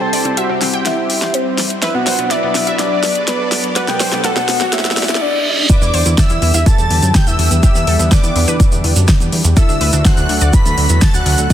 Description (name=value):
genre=progressive house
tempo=124 BPM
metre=4/4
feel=straight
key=E minor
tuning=A4 = 440 Hz
part: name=soft octave-layered synth lead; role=melody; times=0.0-11.5 s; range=B4 to B5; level=-19 LUFS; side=left 1 dB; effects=chorus, phaser, cassette tape, tape echo
part: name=lush unison pad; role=sustained chords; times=0.0-11.5 s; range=D3 to D5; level=-22 LUFS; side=equal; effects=chorus, sidechain pumping
part: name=wide unison pluck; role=arpeggios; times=0.0-11.5 s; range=B3 to G5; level=-23 LUFS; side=equal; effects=sidechain pumping, tape echo
part: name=riser and reverse cymbal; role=sound effects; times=1.4-5.7 s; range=none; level=-24 LUFS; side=right 2 dB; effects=none
part: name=deep house drum kit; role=drums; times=0.1-11.5 s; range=hi-hat, snare drum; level=-19 LUFS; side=left 1 dB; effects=overdrive, sidechain pumping on hats, high-pass filter on hats, high-pass filter on snare
part: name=soft supersaw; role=second line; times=5.7-11.5 s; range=D6 to B6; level=-24 LUFS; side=equal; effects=sidechain pumping, tape echo
part: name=electronic kick drum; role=drums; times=5.7-11.5 s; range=none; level=-12 LUFS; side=equal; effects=none
part: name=tube shaker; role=percussion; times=5.7-11.5 s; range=none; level=-23 LUFS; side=right 4 dB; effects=none
part: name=plucky analog bass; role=bass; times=5.8-11.5 s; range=D2 to F#2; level=-14 LUFS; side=equal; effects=sidechain pumping
room=light reverb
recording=dense, heavily limited modern master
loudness=-11 LUFS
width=side -11 dB against mid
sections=0.0-5.7 A section; 5.7-11.5 B section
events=build-up 0.0-5.7; drum fill 0.0-5.2; filter sweep on soft synth lead 0.0-5.7; riser 1.4-5.7; reverse cymbal 4.7-5.7; drop 5.7-11.5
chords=0.0 C6; 1.8 Bm; 5.7 Em7; 9.6 D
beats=0.37 0.86 1.34 | 1.82 2.31 2.79 3.28 | 3.76 4.24 4.73 5.21 | 5.70 6.18 6.66 7.15 | 7.63 8.12 8.60 9.08 | 9.57 10.05 10.53 11.02 | 11.50